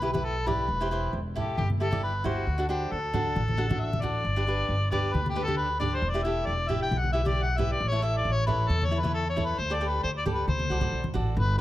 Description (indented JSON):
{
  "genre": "calypso",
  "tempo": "135 BPM",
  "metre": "4/4",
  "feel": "straight",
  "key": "unclear",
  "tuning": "A4 = 442 Hz",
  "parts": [
    { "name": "mellow harmonica", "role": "melody", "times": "0.0-11.6 s", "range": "F#4 to G5", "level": "-30 LUFS", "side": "left 2 dB", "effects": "none" },
    { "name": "cavaquinho", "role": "accompaniment", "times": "0.0-11.6 s", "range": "D4 to E5", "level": "-32 LUFS", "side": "right 1 dB", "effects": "none" },
    { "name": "upright bass", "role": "bass", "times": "0.0-11.6 s", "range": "E1 to E2", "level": "-29 LUFS", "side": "equal", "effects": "none" },
    { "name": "congas", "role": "percussion", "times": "0.1-11.2 s", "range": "none", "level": "-33 LUFS", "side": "right 1 dB", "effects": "none" }
  ],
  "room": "light reverb",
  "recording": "close, detailed microphones",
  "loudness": "-25 LUFS",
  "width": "side -14 dB against mid",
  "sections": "0.0-11.4 A section",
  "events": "none",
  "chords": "0.0 Em; 0.7 C/E; 2.5 D; 4.2 G; 6.0 Em7; 7.8 A; 9.6 Dsus4; 10.5 D7",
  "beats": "0.25 | 0.69 1.14 1.58 2.03 | 2.47 2.92 3.36 3.81 | 4.25 4.70 5.14 5.58 | 6.03 6.47 6.92 7.36 | 7.81 8.25 8.70 9.14 | 9.59 10.03 10.48 10.92 | 11.36"
}